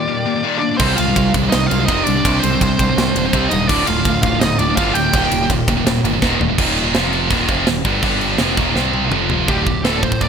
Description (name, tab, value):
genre	heavy metal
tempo	166 BPM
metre	4/4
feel	straight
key	unclear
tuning	A4 = 440 Hz
part	high-gain lead guitar	melody	0.0-5.5, 9.5-10.3 s	G4 to G5	-21 LUFS	equal	distortion, digital delay
part	warm studio string section	sustained chords	0.0-6.6, 9.5-10.3 s	C3 to G4	-31 LUFS	right 2 dB	none
part	high-gain distorted guitar	riff	0.0-10.3 s	D2 to C4	-21 LUFS	left 11 dB	distortion
part	high-gain lead guitar	second line	0.6-5.5 s	C4 to G4	-25 LUFS	right 5 dB	distortion, digital delay
part	scooped high-gain guitar	riff	0.8-10.3 s	D2 to C4	-20 LUFS	right 12 dB	distortion
part	growling picked electric bass	bass	0.8-10.3 s	D1 to C2	-22 LUFS	right 1 dB	overdrive
part	tight metal drum kit	drums	0.8-10.3 s	crash cymbal, kick drum, ride cymbal, snare drum, toms	-20 LUFS	right 1 dB	none
room	light reverb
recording	bright 1980s-style digital production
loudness	-14 LUFS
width	side -7 dB against mid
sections	0.0-6.6 A section; 6.6-9.5 B section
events	half time 0.0-6.6; drum fill 6.2-6.6, 8.8-9.5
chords	0.0 Eb; 0.8 Cm; 3.7 Dm; 5.1 Eb; 6.6 Eb5; 6.9 F5; 7.3 Eb5; 8.0 G5; 8.4 Eb5; 8.8 C5; 9.1 F5; 9.5 Dm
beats	0.07 0.44 | 0.80 1.16 1.52 1.88 | 2.24 2.60 2.97 3.33 | 3.69 4.05 4.41 4.77 | 5.14 5.50 5.86 6.22 | 6.58 6.94 7.31 7.67 | 8.03 8.39 8.75 9.12 | 9.48 9.84 10.20